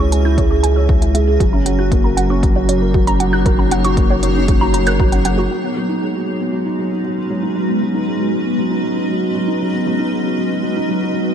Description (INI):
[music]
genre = piano and strings electronica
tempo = 117 BPM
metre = 4/4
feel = straight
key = G# minor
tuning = A4 = 440 Hz
[part]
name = granular cloud pad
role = sustained chords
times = 0.0-11.3 s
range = G#3 to E5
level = -22 LUFS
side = left 1 dB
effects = built-in reverb, sidechain pumping
[part]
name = warbly dusty pluck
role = arpeggios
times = 0.0-5.4 s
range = F#4 to G6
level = -23 LUFS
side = right 2 dB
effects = chorus, sidechain pumping, ping-pong delay
[part]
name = felt-muted upright piano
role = riff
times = 0.0-11.3 s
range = F#3 to C#5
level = -18 LUFS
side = right 2 dB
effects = ping-pong delay
[part]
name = round analog bass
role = bass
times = 0.0-5.5 s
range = F#1 to C#2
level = -18 LUFS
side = left 1 dB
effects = sidechain pumping
[part]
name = electronic hi-hat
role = drums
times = 0.1-5.4 s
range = none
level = -26 LUFS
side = right 2 dB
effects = low-pass filter on hats, low-pass filter on room
[part]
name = electronic kick drum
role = drums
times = 0.4-5.1 s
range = none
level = -16 LUFS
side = equal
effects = none
[sound]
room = light reverb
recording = dark, warm production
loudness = -14 LUFS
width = side -8 dB against mid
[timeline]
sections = 0.0-5.5 A section; 5.5-11.3 B section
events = none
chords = 0.0 C#m; 1.4 F#; 5.5 G#m7